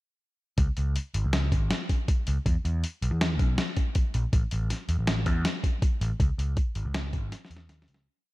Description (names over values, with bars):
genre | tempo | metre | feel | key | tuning
progressive instrumental, band music in an uneven meter | 160 BPM | 5/4 | straight | C# minor | A4 = 438 Hz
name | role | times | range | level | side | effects
overdriven picked electric bass | bass | 0.6-8.1 s | G#1 to E2 | -27 LUFS | equal | none
lo-fi sampler-style drum kit | drums | 0.6-8.0 s | hi-hat, kick drum, snare drum | -26 LUFS | equal | overdrive
room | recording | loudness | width
little or no reverb | none | -25 LUFS | side -19 dB against mid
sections
0.6-8.1 A section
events
fade-out 6.2-8.1; drum fill 7.3-8.1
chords
none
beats
| 0.58 0.96 1.34 1.71 2.09 | 2.46 2.84 3.21 3.59 3.96 | 4.33 4.71 5.08 5.45 5.83 | 6.20 6.57 6.95 7.32 7.69